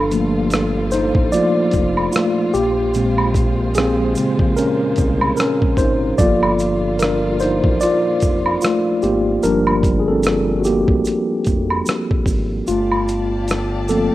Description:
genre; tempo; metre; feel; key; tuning
lo-fi hip hop; 74 BPM; 4/4; swing 59% on 16ths; G minor; A4 = 440 Hz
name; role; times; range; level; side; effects
mellow tine electric piano; accompaniment; 0.0-14.1 s; Bb2 to D5; -17 LUFS; equal; medium stereo tremolo
warm studio string section; sustained chords; 0.0-14.1 s; Bb2 to A5; -28 LUFS; equal; none
smooth synth bass; bass; 0.0-14.1 s; F1 to C2; -24 LUFS; equal; none
dusty soul sampler-style drum kit; drums; 0.1-14.1 s; hi-hat, kick drum, rim click; -20 LUFS; equal; none
tube shaker and woodblock; percussion; 0.1-14.1 s; none; -24 LUFS; right 2 dB; none
room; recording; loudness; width
digital ambience; rough home demo mix, cassette tape; -15 LUFS; side -15 dB against mid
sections
0.0-12.7 A section; 12.7-14.1 B section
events
tine electric piano solo 0.0-12.7, 12.7-14.1; kick muted 12.7-14.1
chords
0.0 Gm9; 2.5 Bbm9; 6.2 Gm9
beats
0.51 1.32 2.13 | 2.94 3.75 4.56 5.37 | 6.18 7.00 7.81 8.62 | 9.43 10.24 11.05 11.86 | 12.67 13.48

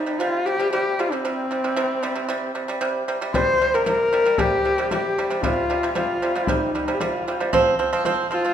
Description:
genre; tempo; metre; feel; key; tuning
mongolian traditional, Mongolian folk; 115 BPM; 4/4; straight; C yu mode; A4 = 440 Hz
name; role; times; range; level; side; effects
clear horsehead fiddle; melody; 0.0-8.5 s; C4 to C5; -22 LUFS; left 2 dB; none
pipa; arpeggios; 0.0-8.5 s; C3 to C4; -23 LUFS; right 3 dB; none
frame drum; percussion; 3.3-8.4 s; none; -29 LUFS; left 3 dB; none
room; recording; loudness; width
wet recital hall reverb, RT60 1.5 s; minimal, uncompressed stereo recording; -19 LUFS; side -9 dB against mid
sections
0.0-3.3 A section; 3.3-8.5 B section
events
none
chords
0.0 C5; 7.5 F5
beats
0.20 0.72 | 1.25 1.77 2.30 2.82 | 3.34 3.87 4.39 4.92 | 5.44 5.96 6.48 7.01 | 7.53 8.05

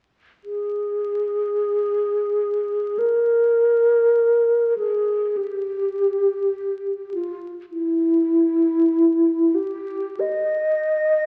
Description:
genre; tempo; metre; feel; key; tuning
classical, free, expressive piece for unaccompanied alto flute; 43-53 BPM; 4/4; rubato; unclear; A4 = 440 Hz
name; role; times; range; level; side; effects
mellow hollow alto flute; solo; 0.4-11.3 s; E4 to Eb5; -21 LUFS; equal; none
room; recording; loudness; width
wet recital hall reverb, RT60 1.6 s; very old 78 rpm record, vinyl crackle; -21 LUFS; mono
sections
0.4-11.3 A section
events
none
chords
none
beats
| 0.44 1.73 2.99 4.18 | 5.37 6.57 7.72 8.89 | 10.20

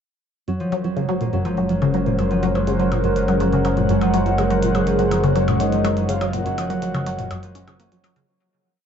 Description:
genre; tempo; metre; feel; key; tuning
ambient, sequencer-driven space music; 123 BPM; 4/4; straight; Gb lydian; A4 = 441 Hz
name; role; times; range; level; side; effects
phased analog pad; sustained chords; 0.5-8.2 s; Ab3 to Gb5; -23 LUFS; right 1 dB; phaser, chorus
concert harp; arpeggios; 0.5-8.8 s; F3 to Db4; -24 LUFS; right 1 dB; auto-pan, tape echo
resonant blip pluck; riff; 0.5-8.2 s; Gb2 to Db4; -23 LUFS; left 1 dB; phaser, lush chorus, tape echo
fat analog bass; bass; 0.5-8.3 s; Gb1; -25 LUFS; equal; none
electronic hi-hat and percussion blips; percussion; 0.5-8.3 s; none; -36 LUFS; left 1 dB; tape echo
bubbling stepped-filter texture; texture; 0.5-8.3 s; C5; -31 LUFS; right 1 dB; chorus, built-in reverb
soft octave-layered synth lead; melody; 4.9-8.0 s; Ab4 to Gb5; -25 LUFS; left 2 dB; chorus, phaser, tape echo
room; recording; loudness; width
moderate huge ambient reverb, RT60 8.5 s; nothing above 7.7 kHz; -18 LUFS; side -8 dB against mid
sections
0.5-8.3 A section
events
fade-in on drum 0.5-8.3; filter sweep on synth arpeggio sound 0.5-8.3; fade-out 5.7-8.3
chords
0.5 Gbadd9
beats
| 0.48 0.97 1.46 1.94 | 2.43 2.92 3.41 3.90 | 4.38 4.87 5.36 5.85 | 6.33 6.82 7.31 7.80

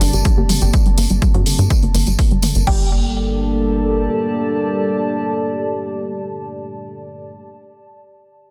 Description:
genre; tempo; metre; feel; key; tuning
melodic techno; 124 BPM; 4/4; straight; G minor; A4 = 440 Hz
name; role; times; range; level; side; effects
dark analog pad; sustained chords; 0.0-7.3 s; G3 to A5; -24 LUFS; equal; chorus, phaser, sidechain pumping
tight sequenced synth; arpeggios; 0.0-2.9 s; D3 to G4; -26 LUFS; equal; chorus, sidechain pumping, delay
filtered dub chord stab; stabs; 0.0-7.6 s; G4 to G5; -30 LUFS; equal; phaser, cassette tape, sidechain pumping, delay
tight sequencer bass; bass; 0.0-4.1 s; G1 to G2; -21 LUFS; equal; sidechain pumping
punchy analog drum machine; drums; 0.0-2.8 s; crash cymbal, hi-hat, toms; -27 LUFS; equal; overdrive
tambourine; percussion; 0.0-2.6 s; none; -29 LUFS; equal; none
warbly tape-like pad; texture; 0.0-7.3 s; G4 to A5; -30 LUFS; equal; chorus, built-in reverb, sidechain pumping
electronic kick drum; drums; 0.3-2.8 s; none; -19 LUFS; equal; overdrive
room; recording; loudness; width
light reverb; dense, heavily limited modern master; -17 LUFS; mono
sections
0.0-2.7 A section; 2.7-6.5 B section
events
fade-out on ambient pad 0.0-2.7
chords
0.0 Gmadd9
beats
0.25 | 0.74 1.22 1.70 2.19 | 2.67 3.15 3.64 4.12 | 4.61 5.09 5.57 6.06

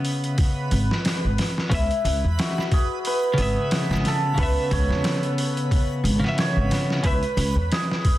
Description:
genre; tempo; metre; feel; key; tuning
trip hop; 90 BPM; 4/4; swing 56% on 16ths; C# minor; A4 = 441 Hz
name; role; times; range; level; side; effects
cimbalom; melody; 0.0-8.2 s; E4 to C#5; -27 LUFS; right 1 dB; tape echo
twelve-string electric guitar; accompaniment; 0.0-7.2 s; C#3 to E5; -26 LUFS; left 1 dB; tremolo, tape echo
trip hop sampler-style drum kit; drums; 0.0-8.2 s; hi-hat, kick drum, snare drum; -24 LUFS; equal; none
backwards swelling texture; texture; 0.0-8.2 s; B4; -36 LUFS; equal; built-in reverb
upright bass; bass; 0.7-7.7 s; G#1 to E2; -23 LUFS; equal; none
room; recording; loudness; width
little or no reverb; dense, heavily limited modern master, vinyl crackle; -20 LUFS; side -15 dB against mid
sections
0.0-8.2 A section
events
none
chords
0.0 C#m7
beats
0.38 1.05 | 1.71 2.38 3.05 3.71 | 4.38 5.05 5.71 6.38 | 7.05 7.71

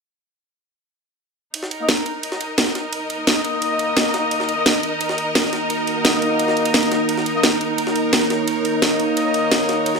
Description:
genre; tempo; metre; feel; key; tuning
dark technical drum and bass; 173 BPM; 4/4; straight; Eb minor; A4 = 440 Hz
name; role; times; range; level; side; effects
deep dark ambient pad; sustained chords; 3.2-10.0 s; Eb4 to Gb5; -24 LUFS; right 2 dB; chorus, built-in reverb
jungle sampler-style drum kit; drums; 1.5-10.0 s; ride cymbal, snare drum; -27 LUFS; right 1 dB; high-pass filter on cymbals, high-pass filter on snare
rich studio string section; texture; 1.5-10.0 s; Eb4 to Eb5; -23 LUFS; right 1 dB; none
mellow brass ensemble; stabs; 1.8-10.0 s; Bb3 to Eb5; -23 LUFS; left 3 dB; low-pass filter, ping-pong delay
electronic snare drum; drums; 1.9-9.6 s; none; -18 LUFS; equal; none
room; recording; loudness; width
moderate plate reverb, RT60 1.7 s; none; -17 LUFS; side -4 dB against mid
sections
1.5-10.0 A section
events
filter sweep on ambient pad 1.5-10.0; filter sweep on brass ensemble 1.5-10.0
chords
1.5 Eb5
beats
| 1.54 1.89 2.23 2.58 | 2.93 3.27 3.62 3.97 | 4.31 4.66 5.01 5.35 | 5.70 6.05 6.39 6.74 | 7.09 7.43 7.78 8.13 | 8.48 8.82 9.17 9.52 | 9.86

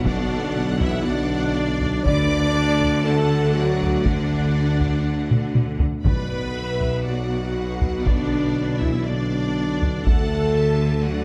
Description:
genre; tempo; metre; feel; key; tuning
cinematic, epic orchestral film score; 120 BPM; 4/4; straight; B minor; A4 = 440 Hz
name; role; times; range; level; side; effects
warm symphonic violin section; melody; 0.0-11.2 s; D5 to D6; -37 LUFS; equal; none
warm symphonic violin section; second line; 0.0-11.2 s; A4 to F#5; -38 LUFS; equal; none
clear symphonic viola section; accompaniment; 0.0-11.2 s; D4 to D5; -33 LUFS; equal; none
mellow French horn section; sustained chords; 0.0-11.2 s; D4 to D5; -30 LUFS; equal; none
mellow trombone section; sustained chords; 0.0-11.2 s; D3 to D4; -31 LUFS; equal; none
clear symphonic double bass section; bass; 0.0-11.2 s; B1 to D2; -29 LUFS; equal; none
rich symphonic cello section; bass; 0.0-11.2 s; B2 to D3; -30 LUFS; equal; none
warm tuba; bass; 0.0-11.2 s; B1 to D2; -30 LUFS; equal; none
taiko ensemble; drums; 0.0-10.5 s; none; -26 LUFS; equal; none
timpani; percussion; 6.1-6.8 s; B2; -33 LUFS; equal; none
room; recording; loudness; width
wet scoring stage reverb, RT60 1.5 s; none; -21 LUFS; mono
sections
0.0-11.2 A section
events
drum fill 5.3-6.0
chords
0.0 Bm; 2.0 D; 6.0 Bm; 10.1 D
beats
| 0.05 0.55 1.05 1.55 | 2.05 2.55 3.05 3.55 | 4.05 4.55 5.05 5.55 | 6.05 6.55 7.05 7.55 | 8.05 8.55 9.05 9.55 | 10.05 10.55 11.06

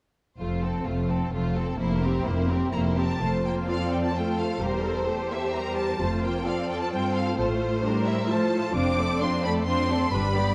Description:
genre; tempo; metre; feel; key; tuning
quick classical-period movement for symphony orchestra; 130 BPM; 3/4; rubato; F major; A4 = 440 Hz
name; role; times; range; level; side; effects
rich studio violin section; melody; 0.4-10.5 s; A4 to D6; -35 LUFS; equal; none
rich studio violin section; second line; 0.4-10.5 s; E4 to D5; -34 LUFS; equal; none
rich studio viola section; accompaniment; 0.4-10.5 s; F3 to A4; -31 LUFS; equal; none
clear studio double bass section; bass; 0.4-10.5 s; E1 to A1; -32 LUFS; equal; none
rich studio cello section; bass; 0.4-10.5 s; E2 to A2; -32 LUFS; equal; none
room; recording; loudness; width
moderate scoring stage reverb, RT60 1.5 s; dark, warm production; -26 LUFS; mono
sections
0.4-3.2 A section; 3.2-10.5 B section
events
none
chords
0.4 F; 1.8 C7/F; 3.2 F; 4.6 C7/E; 6.0 F; 7.4 F/A; 8.8 Dm7/F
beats
| 0.40 0.87 1.34 | 1.79 2.26 2.73 | 3.22 3.68 4.15 | 4.62 5.08 5.54 | 6.00 6.46 6.93 | 7.39 7.84 8.30 | 8.76 9.22 9.67 | 10.13

